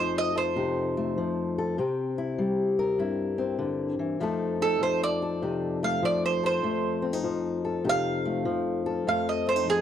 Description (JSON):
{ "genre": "acoustic country blues, solo or duo", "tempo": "99 BPM", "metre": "4/4", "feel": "swing 66% on 8ths", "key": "F mixolydian", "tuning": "A4 = 440 Hz", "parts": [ { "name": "mandolin", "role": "melody", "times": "0.0-9.8 s", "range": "Ab4 to F5", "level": "-27 LUFS", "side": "right 4 dB", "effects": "none" }, { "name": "fingerpicked old ladder-braced acoustic guitar", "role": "accompaniment", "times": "0.0-9.8 s", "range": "F2 to Bb4", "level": "-27 LUFS", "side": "left 3 dB", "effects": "none" } ], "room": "studio reverb", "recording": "dry, close 1970s-style studio recording", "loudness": "-25 LUFS", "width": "side -9 dB against mid", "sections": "0.0-4.2 A section; 4.2-9.8 B section", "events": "mandolin solo 4.2-9.8", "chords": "0.0 F7; 1.8 C7; 4.2 F7" }